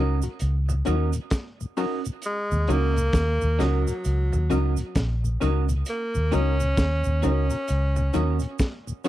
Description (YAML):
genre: roots reggae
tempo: 66 BPM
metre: 4/4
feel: swing 61% on 16ths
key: Eb minor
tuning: A4 = 437 Hz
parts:
  - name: electric guitar at the edge of break-up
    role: accompaniment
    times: 0.0-9.1 s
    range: Db4 to Eb5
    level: -32 LUFS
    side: right 10 dB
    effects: tape echo
  - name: mellow tonewheel organ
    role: accompaniment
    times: 0.0-9.1 s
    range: Eb2 to Eb4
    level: -28 LUFS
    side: left 2 dB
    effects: slow rotary speaker
  - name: filtered dub chord stab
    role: stabs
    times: 0.0-9.1 s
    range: Db4 to Bb4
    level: -30 LUFS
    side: left 9 dB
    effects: chorus
  - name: vintage muted fingered electric bass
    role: bass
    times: 0.0-8.4 s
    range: Bb1 to Eb2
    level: -23 LUFS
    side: equal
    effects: none
  - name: crunchy breakbeat drum kit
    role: drums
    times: 0.2-9.1 s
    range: hi-hat, kick drum, snare drum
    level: -25 LUFS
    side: equal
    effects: none
  - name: cabasa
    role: percussion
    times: 0.2-9.1 s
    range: none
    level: -42 LUFS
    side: right 16 dB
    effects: none
  - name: warm tenor saxophone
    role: melody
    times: 2.3-8.6 s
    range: Gb3 to Db4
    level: -28 LUFS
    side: equal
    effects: tape echo
room: little or no reverb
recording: dry, close 1970s-style studio recording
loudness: -22 LUFS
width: side -14 dB against mid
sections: 0.0-9.1 A section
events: tenor saxophone solo 0.0-9.1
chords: 0.0 Ebm7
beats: 0.41 1.31 | 2.22 3.13 4.04 4.95 | 5.86 6.77 7.68 8.59